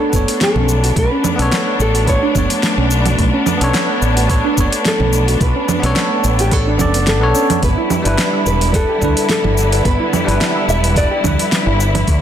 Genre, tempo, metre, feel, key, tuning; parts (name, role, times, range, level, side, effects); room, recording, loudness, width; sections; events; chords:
sunset chillout; 108 BPM; 4/4; swing 54% on 16ths; B minor; A4 = 440 Hz
nylon-string guitar; melody; 0.0-11.5 s; G4 to E5; -20 LUFS; left 1 dB; ping-pong delay
muted studio string section; sustained chords; 0.0-12.2 s; D3 to C#5; -21 LUFS; left 2 dB
soft round pluck; arpeggios; 0.0-12.2 s; A3 to E5; -23 LUFS; right 4 dB; lush chorus, ping-pong delay
bell-like tine electric piano; accompaniment; 0.1-12.1 s; G3 to D5; -21 LUFS; moving between left 4 dB and right 3 dB; auto-pan, ping-pong delay
mellow fretless electric bass; bass; 0.1-12.2 s; E1 to D2; -17 LUFS; equal
electronic kick drum; drums; 0.1-12.2 s; -18 LUFS; equal
smooth R&B drum kit; drums; 0.1-12.2 s; congas, hi-hat, shaker, snare drum; -19 LUFS; right 2 dB
moderate recital hall reverb, RT60 1.6 s, digital ambience; dense, heavily limited modern master; -12 LUFS; side -10 dB against mid
0.0-12.2 A section
0.0 Bm9; 7.6 G6